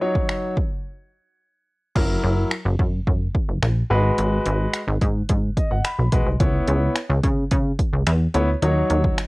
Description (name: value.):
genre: dance-pop.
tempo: 108 BPM.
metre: 4/4.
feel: straight.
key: G# minor.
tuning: A4 = 440 Hz.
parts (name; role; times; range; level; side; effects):
warm concert grand piano; accompaniment; 0.0-9.2 s; F#3 to B5; -23 LUFS; left 1 dB; sidechain pumping, cassette tape, plate reverb.
deep house drum kit; drums; 0.2-9.3 s; crash cymbal, finger snaps, hi-hat, kick drum; -22 LUFS; equal; overdrive, cassette tape.
plucky analog bass; bass; 2.0-9.1 s; F#1 to C#3; -21 LUFS; equal; sidechain pumping.
room: light reverb.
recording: home recording on cassette.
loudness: -19 LUFS.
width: side -23 dB against mid.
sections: 0.0-2.0 A section; 2.0-9.3 B section.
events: break 0.8-2.0; grand piano fill 5.3-6.4.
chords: 0.0 D#m7; 2.0 F#7; 3.9 G#m7; 6.4 C#m7; 8.6 D#m7.